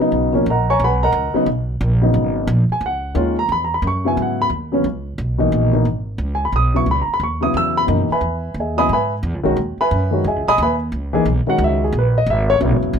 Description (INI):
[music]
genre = modal jazz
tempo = 178 BPM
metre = 4/4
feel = swing 63% on 8ths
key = C# dorian from 3.5 s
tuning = A4 = 441 Hz
[part]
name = dark baby grand piano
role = accompaniment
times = 0.0-13.0 s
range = Cb3 to E6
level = -17 LUFS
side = left 1 dB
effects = none
[part]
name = upright bass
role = bass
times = 0.0-13.0 s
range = E1 to G#2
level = -20 LUFS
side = right 1 dB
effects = none
[sound]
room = light reverb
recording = close, detailed microphones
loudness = -16 LUFS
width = side -7 dB against mid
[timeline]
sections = 0.0-3.5 A section; 3.5-13.0 A section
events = none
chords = 0.0 Abm11; 3.5 C#m9